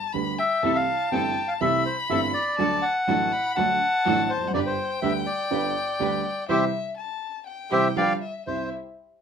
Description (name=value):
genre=tango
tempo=123 BPM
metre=4/4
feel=rubato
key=C major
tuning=A4 = 440 Hz
part: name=warm violin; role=second line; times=0.0-8.7 s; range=E5 to B5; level=-31 LUFS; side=left 7 dB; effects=none
part: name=dark upright piano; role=accompaniment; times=0.1-8.7 s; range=G1 to G4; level=-27 LUFS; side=right 5 dB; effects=none
part: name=bandoneon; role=melody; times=0.4-8.7 s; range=G4 to G5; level=-24 LUFS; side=left 1 dB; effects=none
part: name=muted chamber string section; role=stabs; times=0.6-8.7 s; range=C4 to C5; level=-32 LUFS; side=right 1 dB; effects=none
room=moderate studio ambience, RT60 0.5 s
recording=minimal, uncompressed stereo recording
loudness=-22 LUFS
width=side -7 dB against mid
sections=0.0-8.5 A section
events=band accent 6.5-8.5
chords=0.0 G; 0.6 C6; 2.6 D; 4.5 G; 6.5 C; 8.0 G7; 8.5 C